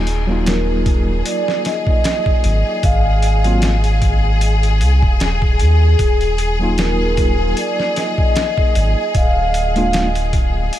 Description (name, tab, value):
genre	trip hop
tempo	76 BPM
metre	4/4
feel	swing 55% on 16ths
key	Eb harmonic minor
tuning	A4 = 444 Hz
part	pure breathy sine lead	melody	0.0-10.7 s	Ab4 to F5	-21 LUFS	right 1 dB	wide subtle chorus, tape echo
part	tine electric piano	accompaniment	0.0-10.1 s	Gb3 to F4	-24 LUFS	equal	tremolo, tape echo
part	clear symphonic string section	sustained chords	0.0-10.8 s	Ab4	-24 LUFS	left 3 dB	none
part	round analog bass	bass	0.0-10.7 s	D1 to Eb2	-16 LUFS	equal	tube saturation
part	boom bap sampler-style drum kit	drums	0.1-10.8 s	hi-hat, kick drum, snare drum	-19 LUFS	equal	none
room	light reverb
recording	none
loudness	-13 LUFS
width	side -12 dB against mid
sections	0.0-10.8 A section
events	none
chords	0.0 Ebmadd9; 2.8 Ab6; 6.0 Ebmadd9; 9.2 Bb7/D